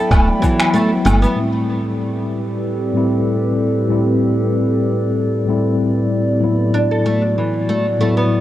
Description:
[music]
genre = organic downtempo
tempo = 95 BPM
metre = 4/4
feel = swing 53% on 16ths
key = A dorian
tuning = A4 = 439 Hz
[part]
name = tine electric piano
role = accompaniment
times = 0.0-8.4 s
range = A2 to E4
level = -17 LUFS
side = left 1 dB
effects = medium stereo tremolo, sidechain pumping, tape echo
[part]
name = warbly tape-like pad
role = sustained chords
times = 0.0-8.4 s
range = A2 to B5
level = -22 LUFS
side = equal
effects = chorus, built-in reverb, sidechain pumping
[part]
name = oud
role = arpeggios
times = 0.0-1.4, 6.7-8.4 s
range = E3 to A4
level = -20 LUFS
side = right 1 dB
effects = tape echo
[part]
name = woody FM bass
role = bass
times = 0.1-1.3 s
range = D1 to G1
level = -15 LUFS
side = equal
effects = tube saturation, sidechain pumping
[part]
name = electronic kick drum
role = drums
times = 0.1-0.6 s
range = none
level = -16 LUFS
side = equal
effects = overdrive
[part]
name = electronic woodblock, shaker and finger snaps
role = drums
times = 0.1-1.3 s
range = none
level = -20 LUFS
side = equal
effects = overdrive
[sound]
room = light reverb, digital ambience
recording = worn, warbling old tape, cassette tape, warbly pitch drift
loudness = -15 LUFS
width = side -13 dB against mid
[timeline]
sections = 0.0-1.4 A section; 1.4-8.4 B section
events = none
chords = 0.0 G6; 1.4 Am11; 6.4 Dadd9/A

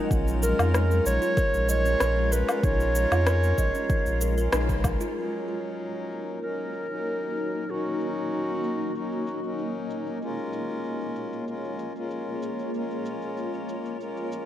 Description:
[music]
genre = organic downtempo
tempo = 95 BPM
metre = 4/4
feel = straight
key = Eb minor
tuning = A4 = 440 Hz
[part]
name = mellow clarinet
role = melody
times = 0.0-9.9 s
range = Gb4 to Db5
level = -29 LUFS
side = right 1 dB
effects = vintage 12-bit sampler grit, tape echo
[part]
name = hand-pumped harmonium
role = accompaniment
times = 0.0-14.5 s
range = Gb3 to Bb4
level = -33 LUFS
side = left 2 dB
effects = sidechain pumping, tape echo
[part]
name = granular cloud pad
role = sustained chords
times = 0.0-14.5 s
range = Ab3 to Eb5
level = -33 LUFS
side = equal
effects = built-in reverb, sidechain pumping
[part]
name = kalimba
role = arpeggios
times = 0.0-5.2 s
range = Db4 to Eb5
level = -32 LUFS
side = left 1 dB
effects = tape echo
[part]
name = warm sub bass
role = bass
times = 0.1-5.0 s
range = Bb1 to F2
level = -25 LUFS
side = equal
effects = sidechain pumping
[part]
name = electronic cabasa, woodblock and rim click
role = drums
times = 0.1-14.5 s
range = none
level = -30 LUFS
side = left 1 dB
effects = low-pass filter on perc, low-pass filter on snare
[part]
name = electronic kick drum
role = drums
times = 0.1-5.0 s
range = none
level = -26 LUFS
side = equal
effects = none
[sound]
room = light reverb, studio ambience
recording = none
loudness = -24 LUFS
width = side -12 dB against mid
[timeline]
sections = 0.0-5.2 A section; 5.2-14.5 B section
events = band accent 4.5-4.8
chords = 0.1 Bbm7; 5.2 Ebm7; 10.2 Bbm7

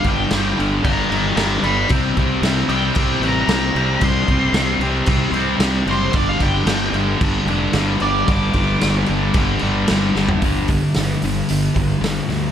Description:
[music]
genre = garage rock duo or trio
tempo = 113 BPM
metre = 4/4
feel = straight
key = unclear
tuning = A4 = 440 Hz
[part]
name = octave-fuzz lead guitar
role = melody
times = 0.0-9.8 s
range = C5 to D6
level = -23 LUFS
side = equal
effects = distortion, plate reverb
[part]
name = thick fuzz guitar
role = riff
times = 0.0-12.5 s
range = G2 to C4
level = -19 LUFS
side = left 1 dB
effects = distortion
[part]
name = fuzz fingered electric bass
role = bass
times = 0.0-12.5 s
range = F1 to D2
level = -23 LUFS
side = equal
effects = overdrive, tube saturation
[part]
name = raw garage drum kit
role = drums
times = 0.0-12.4 s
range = crash cymbal, hi-hat, kick drum, snare drum, toms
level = -21 LUFS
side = equal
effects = none
[sound]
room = moderate studio reverb, RT60 0.6 s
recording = none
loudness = -15 LUFS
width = side -9 dB against mid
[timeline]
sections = 0.0-10.4 A section; 10.4-12.5 B section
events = drum fill 10.2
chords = 0.0 G5; 1.9 C5; 6.2 G5

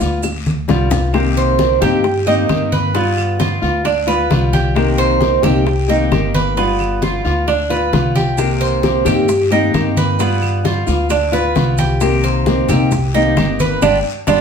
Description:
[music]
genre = latin, Cuban son and guajira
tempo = 132 BPM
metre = 4/4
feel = straight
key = C minor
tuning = A4 = 440 Hz
[part]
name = flamenco guitar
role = accompaniment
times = 0.0-14.4 s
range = C3 to G4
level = -18 LUFS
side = left 3 dB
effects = none
[part]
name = upright bass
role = bass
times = 0.0-14.4 s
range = G1 to G2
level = -19 LUFS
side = equal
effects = none
[part]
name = bongos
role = percussion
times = 0.0-14.4 s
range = none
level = -25 LUFS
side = left 5 dB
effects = none
[part]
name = congas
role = percussion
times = 0.0-14.4 s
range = none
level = -22 LUFS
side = equal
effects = none
[part]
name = guiro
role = percussion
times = 0.0-14.4 s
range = none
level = -33 LUFS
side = left 5 dB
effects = none
[part]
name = maracas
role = percussion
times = 0.0-1.1, 8.4-14.4 s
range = none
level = -33 LUFS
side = right 5 dB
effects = none
[part]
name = claves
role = percussion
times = 0.2-14.4 s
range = none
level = -30 LUFS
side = right 7 dB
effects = none
[part]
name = Cuban tres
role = arpeggios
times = 1.4-14.4 s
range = B3 to C5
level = -18 LUFS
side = right 4 dB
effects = none
[sound]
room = wet studio reverb, RT60 0.7 s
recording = heard from further back in the room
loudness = -13 LUFS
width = side -6 dB against mid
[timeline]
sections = 0.0-1.1 A section; 1.1-14.4 B section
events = drum fill 0.2-1.1; band accent 13.8-14.4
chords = 0.0 G7; 1.1 Cm7; 2.9 G7; 4.8 Cm7; 6.6 G7; 8.4 Cm7; 10.2 G7; 12.0 Cm7; 13.8 G7

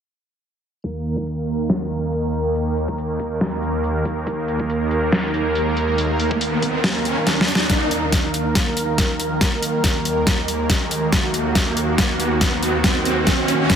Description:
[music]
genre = heavy wobble dubstep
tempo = 140 BPM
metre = 4/4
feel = swing 53% on 16ths, half-time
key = Eb minor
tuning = A4 = 440 Hz
[part]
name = supersaw chords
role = sustained chords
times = 0.8-13.8 s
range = Eb2 to Bb4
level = -21 LUFS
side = right 1 dB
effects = sidechain pumping, low-pass filter
[part]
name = dubstep drum kit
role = drums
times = 0.8-13.8 s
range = hi-hat, snare drum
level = -22 LUFS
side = left 1 dB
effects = overdrive, studio reverb
[part]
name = electronic kick drum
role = drums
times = 0.8-13.8 s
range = none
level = -22 LUFS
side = left 1 dB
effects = overdrive, high-pass filter on kick, studio reverb
[part]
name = riser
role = sound effects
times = 5.7-13.8 s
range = none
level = -25 LUFS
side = right 1 dB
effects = none
[sound]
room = moderate lush hall reverb, RT60 2.2 s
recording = heavily compressed radio sound, low-pass filter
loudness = -18 LUFS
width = side -8 dB against mid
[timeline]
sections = 0.8-7.7 A section; 7.7-13.8 B section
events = filter sweep 0.8-7.7; riser 5.7-7.7, 7.7-13.8; drum fill 7.3-7.7, 7.7-13.8; build-up 7.7-13.8; filter sweep on supersaw synth 7.7-13.8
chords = 0.8 Eb5

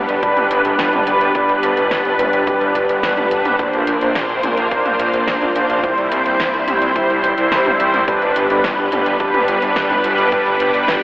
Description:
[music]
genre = synthwave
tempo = 107 BPM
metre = 4/4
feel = straight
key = G major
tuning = A4 = 440 Hz
[part]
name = string machine, full ensemble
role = sustained chords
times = 0.0-11.0 s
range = G3 to C5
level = -18 LUFS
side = equal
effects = ensemble chorus, sidechain pumping
[part]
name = mellow synth brass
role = stabs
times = 0.0-10.9 s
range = G3 to C5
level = -17 LUFS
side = equal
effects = chorus, analog delay
[part]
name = wide detuned saw bass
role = bass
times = 0.0-11.0 s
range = D1 to C2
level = -22 LUFS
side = equal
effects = chorus, sidechain pumping
[part]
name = pop drum kit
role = drums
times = 0.1-11.0 s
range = hi-hat, snare drum, toms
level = -26 LUFS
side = equal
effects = studio reverb
[part]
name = electronic kick drum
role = drums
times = 0.2-10.4 s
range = none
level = -25 LUFS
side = equal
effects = studio reverb
[sound]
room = wet cathedral reverb, RT60 6.4 s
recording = dreamy mix soaked in reverb, telephone sound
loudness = -14 LUFS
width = side -20 dB against mid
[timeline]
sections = 0.0-11.0 A section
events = none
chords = 0.0 G; 3.6 Bbadd9; 5.8 C; 8.1 G

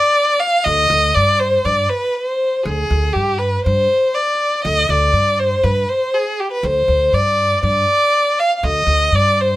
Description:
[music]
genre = Arabic maqam ensemble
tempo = 120 BPM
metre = 4/4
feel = straight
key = unclear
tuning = A4 = 440 Hz
[part]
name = warm violin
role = melody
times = 0.0-9.6 s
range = G4 to F5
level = -14 LUFS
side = equal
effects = none
[part]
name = upright bass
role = bass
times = 0.7-9.5 s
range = D2 to G2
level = -19 LUFS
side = equal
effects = none
[sound]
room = moderate studio reverb, RT60 0.5 s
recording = none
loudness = -14 LUFS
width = side -16 dB against mid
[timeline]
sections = 0.0-9.6 A section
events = none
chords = none

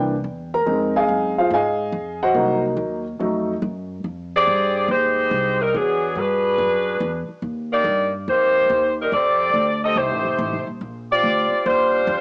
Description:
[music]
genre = jazz, big band swing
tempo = 142 BPM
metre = 4/4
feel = swing 67% on 8ths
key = unclear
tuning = A4 = 440 Hz
[part]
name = warm concert grand piano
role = accompaniment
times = 0.0-3.5 s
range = E3 to Bb5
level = -18 LUFS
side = equal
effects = cassette tape
[part]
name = upright bass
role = bass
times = 0.0-12.2 s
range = Eb1 to Ab2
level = -28 LUFS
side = equal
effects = none
[part]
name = mellow saxophone section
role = melody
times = 4.4-12.2 s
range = F#3 to Eb5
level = -17 LUFS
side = equal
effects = cassette tape
[sound]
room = moderate spring reverb, RT60 1.5 s, studio ambience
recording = home recording on cassette, small speaker sound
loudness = -17 LUFS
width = side -32 dB against mid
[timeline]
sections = 0.0-4.0 A section; 4.0-12.2 B section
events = grand piano solo 0.0-4.0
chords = 0.0 C7; 0.7 Fm7; 2.4 Cm7b5; 3.2 F7b9; 4.0 Fm9; 5.7 E9; 7.4 Ebmaj7; 9.1 F13; 10.8 Bb69

